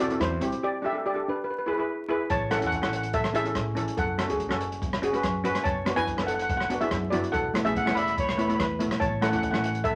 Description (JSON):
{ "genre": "calypso", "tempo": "143 BPM", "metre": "4/4", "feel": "straight", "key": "A major", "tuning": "A4 = 440 Hz", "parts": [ { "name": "steel pan", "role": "melody", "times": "0.0-10.0 s", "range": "D4 to B5", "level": "-30 LUFS", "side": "equal", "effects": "none" }, { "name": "steel pan", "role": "accompaniment", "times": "0.0-9.8 s", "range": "A3 to B4", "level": "-32 LUFS", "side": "equal", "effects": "none" }, { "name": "upright bass", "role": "bass", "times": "0.0-10.0 s", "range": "E1 to A2", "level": "-37 LUFS", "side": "equal", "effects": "none" }, { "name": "open jazz drum kit", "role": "drums", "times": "0.1-9.9 s", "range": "hi-hat, kick drum, rim click", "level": "-34 LUFS", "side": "equal", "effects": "none" }, { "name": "growling trumpet", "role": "second line", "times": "7.8-8.9 s", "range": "B4 to F#5", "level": "-31 LUFS", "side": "equal", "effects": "none" } ], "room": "moderate studio reverb, RT60 0.6 s", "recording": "vinyl crackle", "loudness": "-27 LUFS", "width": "mono", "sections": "0.0-2.3 A section; 2.3-10.0 A section", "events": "break 0.6-2.3", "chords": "0.0 Am/E; 0.6 Dsus4; 1.5 E; 2.3 A; 4.0 F#m; 5.6 Bm/F#; 7.3 Esus4; 9.0 A", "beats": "0.20 | 0.62 1.04 1.46 1.88 | 2.30 2.72 3.13 3.55 | 3.97 4.39 4.81 5.23 | 5.65 6.07 6.49 6.91 | 7.33 7.75 8.17 8.59 | 9.01 9.43 9.84" }